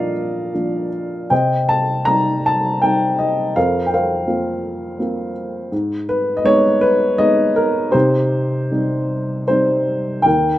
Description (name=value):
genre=classical, lyrical solo piano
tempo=76-85 BPM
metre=3/4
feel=rubato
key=C minor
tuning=A4 = 440 Hz
part: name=dark upright piano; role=solo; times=0.0-10.6 s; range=Eb2 to Bb5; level=-15 LUFS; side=equal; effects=none
room=light reverb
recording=close, detailed microphones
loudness=-15 LUFS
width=side -14 dB against mid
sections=0.0-10.3 A section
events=none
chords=0.0 Bb; 1.3 Cm; 3.6 Fsus4; 5.7 Abm; 7.9 Cm